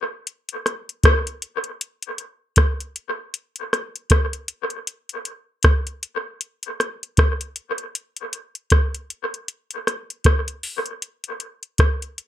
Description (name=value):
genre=reggae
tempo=78 BPM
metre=4/4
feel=swing 59% on 16ths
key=none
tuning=none
part: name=soft vintage rhythm box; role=drums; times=0.3-12.3 s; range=hi-hat, kick drum, rim click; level=-18 LUFS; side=equal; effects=dub echo
room=moderate small room reverb, RT60 0.5 s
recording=none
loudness=-21 LUFS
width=side -12 dB against mid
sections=0.0-11.0 A section; 11.0-12.3 B section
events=none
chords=none